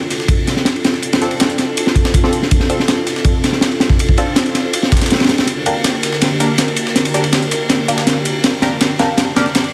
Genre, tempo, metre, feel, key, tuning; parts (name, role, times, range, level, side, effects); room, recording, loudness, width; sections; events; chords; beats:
drum and bass, jungle; 162 BPM; 4/4; straight; D minor; A4 = 439 Hz
airy breathy pad; sustained chords; 0.0-9.7 s; D3 to Bb4; -24 LUFS; equal; chorus, vintage 12-bit sampler grit
breakbeat sampler-style drum kit; drums; 0.1-9.6 s; hi-hat, snare drum; -26 LUFS; equal; high-pass filter on hats, high-pass filter on snare
crunchy breakbeat drum kit; drums; 0.1-9.7 s; kick drum, ride cymbal, snare drum; -17 LUFS; equal
band-passed chord stab; stabs; 1.2-9.5 s; Bb3 to Bb4; -24 LUFS; equal; phaser, analog chorus, dub echo
light reverb, studio reverb; -15 LUFS; mono
0.0-9.7 A section
build-up 0.0-9.7; filter sweep on analog synth pad 0.0-9.7; drum fill 5.5-9.7
0.0 Dm7; 5.5 Gm/D
0.29 0.66 | 1.03 1.40 1.77 2.14 | 2.51 2.88 3.25 3.62 | 3.99 4.37 4.74 5.11 | 5.48 5.85 6.22 6.59 | 6.96 7.33 7.70 8.07 | 8.44 8.81 9.18 9.55